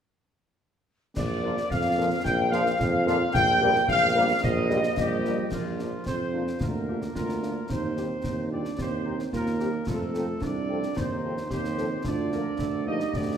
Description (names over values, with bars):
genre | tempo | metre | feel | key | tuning
military-style march for wind band | 110 BPM | 2/4 | straight | Bb major | A4 = 438 Hz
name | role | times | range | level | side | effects
dark trumpet section | melody | 1.2-13.4 s | F4 to G5 | -30 LUFS | equal | none
dark woodwind section | second line | 1.2-13.4 s | C4 to G5 | -33 LUFS | left 1 dB | none
mellow hollow small flute group | second line | 1.2-5.5 s | D5 to G5 | -31 LUFS | left 3 dB | none
clear tuba | bass | 1.2-13.4 s | Bb1 to F2 | -29 LUFS | right 2 dB | none
concert snare drum, clash cymbals and concert bass drum | drums | 1.2-13.4 s | none | -34 LUFS | left 1 dB | none
dark French horn section | accompaniment | 1.4-13.0 s | F3 to Bb4 | -36 LUFS | left 4 dB | none
dark trombone section | sustained chords | 1.4-5.3 s | Bb2 to G3 | -34 LUFS | right 1 dB | none
mellow euphonium | second line | 5.0-13.4 s | F3 to Eb4 | -33 LUFS | right 5 dB | none
room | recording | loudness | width
wet scoring stage reverb, RT60 1.9 s | none | -24 LUFS | side -8 dB against mid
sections
1.2-5.5 A section; 5.5-13.4 B section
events
none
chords
1.2 Bb; 3.3 Eb/Bb; 5.5 Bb; 6.6 Bb/D; 7.7 Cm/Eb; 9.9 F; 11.0 F7/Eb; 12.0 Bb/D